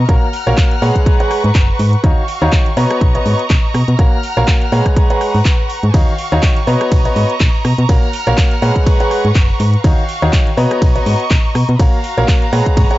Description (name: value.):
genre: piano house.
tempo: 123 BPM.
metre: 4/4.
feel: swing 56% on 16ths.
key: unclear.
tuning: A4 = 443 Hz.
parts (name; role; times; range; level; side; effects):
rich studio violin section; sustained chords; 0.0-13.0 s; Gb4 to F6; -22 LUFS; right 1 dB; sidechain pumping.
solid FM bass; bass; 0.0-12.9 s; Gb1 to B2; -14 LUFS; equal; sidechain pumping.
clear concert grand piano; riff; 0.1-13.0 s; Eb3 to Bb5; -18 LUFS; equal; sidechain pumping.
electronic kick drum; drums; 0.1-12.9 s; none; -12 LUFS; equal; none.
house drum kit; drums; 0.1-13.0 s; handclaps, hi-hat, ride cymbal, rim click; -24 LUFS; equal; none.
room: little or no reverb.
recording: dry, gritty hardware recording, transformer saturation, cassette tape, nothing above 7.7 kHz.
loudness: -11 LUFS.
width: side -16 dB against mid.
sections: 0.0-13.0 A section.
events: none.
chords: 0.1 Gbmaj7/Bb; 1.1 Abm11; 2.0 Ebm9; 2.8 Bmaj9; 4.0 Gbmaj7/Bb; 5.0 Abm11; 5.9 Ebm9; 6.7 Bmaj9; 7.9 Gbmaj7/Bb; 8.9 Abm11; 9.8 Ebm9; 10.6 Bmaj9; 11.8 Gbmaj7/Bb.